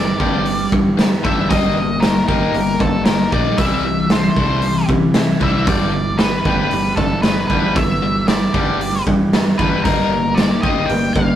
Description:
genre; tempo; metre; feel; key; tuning
indie rock; 115 BPM; 4/4; straight; unclear; A4 = 441 Hz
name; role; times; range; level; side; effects
octave-fuzz lead guitar; melody; 0.0-11.4 s; A4 to G5; -22 LUFS; left 1 dB; distortion
biting overdriven guitar; riff; 0.0-11.4 s; G2 to Eb4; -21 LUFS; left 5 dB; none
electric guitar at the edge of break-up; riff; 0.0-11.4 s; G2 to A4; -23 LUFS; right 4 dB; none
fingered electric bass; bass; 0.0-11.4 s; G1 to C3; -22 LUFS; equal; none
raw garage drum kit; drums; 0.2-11.3 s; hi-hat, kick drum, snare drum; -18 LUFS; equal; none
room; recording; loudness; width
moderate stone room reverb, RT60 1.0 s; rough rehearsal-room recording, tube saturation; -14 LUFS; side -11 dB against mid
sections
0.0-11.4 A section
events
none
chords
0.0 G6; 1.5 Eb/G; 3.6 C6; 5.7 G6; 9.8 Eb/G

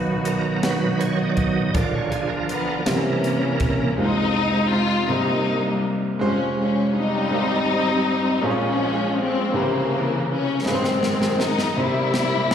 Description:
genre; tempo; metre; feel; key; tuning
slow gospel; 54 BPM (dotted quarters); 6/8; straight; F minor from 4.0 s; A4 = 440 Hz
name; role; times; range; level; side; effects
clear upright piano; accompaniment; 0.0-12.5 s; F1 to Db5; -25 LUFS; right 1 dB; slapback echo
bright tonewheel organ; sustained chords; 0.0-3.9 s; B2 to D#5; -23 LUFS; right 3 dB; slow rotary speaker, overdrive, chorus vibrato
muted studio string section; sustained chords; 0.0-4.0 s; C3 to Bb4; -32 LUFS; equal; none
crisp fusion drum kit; drums; 0.3-3.8, 10.7-12.5 s; hi-hat, kick drum, snare drum; -26 LUFS; equal; none
warm studio string section; melody; 2.5-12.5 s; Db3 to F4; -21 LUFS; left 2 dB; slapback echo, tape echo
room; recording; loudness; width
light reverb, small room ambience; live gig heard through the venue's PA, recital hall reverb; -19 LUFS; side -8 dB against mid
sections
0.0-4.0 A section; 4.0-12.5 B section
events
tonewheel organ solo 0.0-4.0; drum fill 10.7-12.5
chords
0.0 B; 1.7 Bb; 2.9 C7; 4.0 Fm7; 5.1 Cm7; 6.2 Dbmaj7/F; 7.3 Abmaj7; 8.4 Bbm7; 9.5 C7b9; 10.7 Ab; 11.8 C7

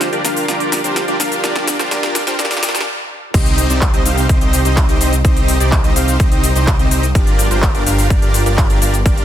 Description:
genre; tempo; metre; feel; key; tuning
EDM, festival progressive house; 126 BPM; 4/4; straight; C minor; A4 = 440 Hz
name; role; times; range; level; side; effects
dense compressed supersaw; riff; 0.0-9.2 s; C4 to F5; -18 LUFS; equal; sidechain pumping, low-pass filter, dub echo
big-room dance drum kit; drums; 0.0-9.2 s; crash cymbal, handclaps, hi-hat, shaker, snare drum; -20 LUFS; left 1 dB; overdrive, high-pass filter on hats, high-pass filter on perc, high-pass filter on snare, high-pass filter on cymbals
wide detuned saw bass; bass; 3.3-9.2 s; G1 to C2; -16 LUFS; equal; chorus, sidechain pumping
electronic kick drum; drums; 3.3-9.2 s; none; -14 LUFS; equal; overdrive
room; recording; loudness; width
light reverb; dense, heavily limited modern master, high-pass filter; -12 LUFS; side -11 dB against mid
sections
0.0-3.3 A section; 3.3-9.2 B section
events
build-up 0.0-3.3; drum fill 0.0-2.9; stop 2.9-3.3; drop 3.3-9.2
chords
0.0 Gm7; 3.3 Cm; 7.2 Gm7

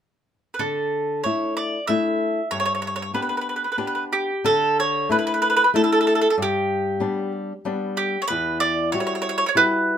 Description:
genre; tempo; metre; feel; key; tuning
italian folk, Italian serenade; 94 BPM; 3/4; rubato; D major; A4 = 441 Hz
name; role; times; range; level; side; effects
mandolin; melody; 0.5-10.0 s; G4 to E5; -21 LUFS; right 2 dB; none
flamenco guitar; accompaniment; 0.6-10.0 s; E2 to G4; -25 LUFS; left 4 dB; none
room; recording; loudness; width
wet small room reverb, RT60 0.6 s; minimal, uncompressed stereo recording; -20 LUFS; side -9 dB against mid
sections
0.6-4.4 A section; 4.4-10.0 B section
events
none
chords
0.0 N.C.; 0.6 Dsus2; 2.5 G; 4.4 Dsus2; 6.4 G; 8.3 Emadd9

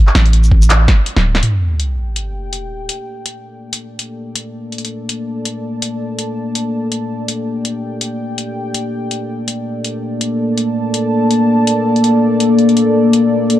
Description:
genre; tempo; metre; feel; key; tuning
half-time drum and bass; 164 BPM; 4/4; swing 57% on 16ths, half-time; G minor; A4 = 439 Hz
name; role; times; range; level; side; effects
drum and bass drum kit; drums; 0.1-13.6 s; handclaps, hi-hat, shaker, snare drum; -19 LUFS; equal; none
long sustained 808-style bass; bass; 0.2-1.4 s; D1 to A1; -10 LUFS; equal; none
electronic kick drum; drums; 0.5-1.0 s; none; -10 LUFS; equal; none
dark analog pad; sustained chords; 2.3-13.6 s; Bb3 to A5; -15 LUFS; left 1 dB; chorus, sidechain pumping
sub drop; sound effects; 1.4-2.9 s; none; -18 LUFS; equal; none
room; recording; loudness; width
moderate lush hall reverb, RT60 1.8 s; dark, warm production; -14 LUFS; side -13 dB against mid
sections
0.0-1.4 A section; 1.4-13.6 B section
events
break 1.1-1.4; impact 1.4-2.9; filter sweep on analog synth pad 1.4-13.6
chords
0.0 Gsus2 (rootless); 1.4 Gmadd9

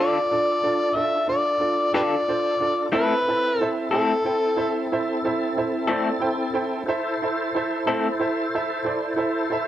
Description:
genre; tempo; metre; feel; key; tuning
blues; 61 BPM (dotted quarters); 12/8; straight; A minor; A4 = 441 Hz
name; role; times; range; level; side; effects
overdriven harmonica; melody; 0.0-4.9 s; G4 to E5; -22 LUFS; left 1 dB; none
bright upright piano; accompaniment; 0.0-9.7 s; D4 to G5; -26 LUFS; right 4 dB; none
electric guitar through a small old amp; accompaniment; 0.0-8.1 s; D3 to A4; -23 LUFS; left 4 dB; tremolo
tonewheel organ; sustained chords; 0.0-9.7 s; C4 to C5; -27 LUFS; equal; slow rotary speaker, overdrive, chorus vibrato
room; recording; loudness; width
wet studio reverb, RT60 0.7 s; dark, warm production; -21 LUFS; side -12 dB against mid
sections
0.0-9.7 A section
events
none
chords
0.0 Dm; 2.9 Am

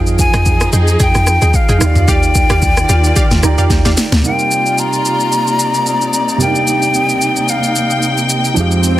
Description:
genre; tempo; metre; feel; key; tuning
amapiano; 111 BPM; 4/4; swing 55% on 16ths; C minor; A4 = 441 Hz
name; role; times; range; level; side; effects
dark grand piano; accompaniment; 0.0-9.0 s; C3 to Bb5; -20 LUFS; right 5 dB; none
warm studio string section; sustained chords; 0.0-9.0 s; C3 to G5; -19 LUFS; equal; sidechain pumping
deep log drum bass; bass; 0.0-4.2 s; D2 to F2; -14 LUFS; equal; none
afro-pop drum kit; drums; 0.1-9.0 s; hi-hat, kick drum, rim click, shaker, snare drum, toms; -15 LUFS; equal; overdrive
breathy hollow jazz flute; melody; 0.2-8.3 s; F5 to Bb5; -16 LUFS; left 2 dB; tape echo
analog pluck; stabs; 0.3-3.9 s; G4 to G5; -23 LUFS; right 2 dB; chorus, tape echo
fretless electric bass; bass; 8.6-9.0 s; F2; -14 LUFS; equal; none
swell; sound effects; 8.7-9.0 s; none; -19 LUFS; right 4 dB; none
room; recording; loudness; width
light reverb; dense, heavily limited modern master; -10 LUFS; side -14 dB against mid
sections
0.0-4.2 A section; 4.2-9.0 B section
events
drop 0.0-4.2; grand piano fill 3.2-4.2; drum fill 3.7-4.2; swell 8.7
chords
0.0 Fm9; 1.8 Ebmaj9; 4.2 Cm11

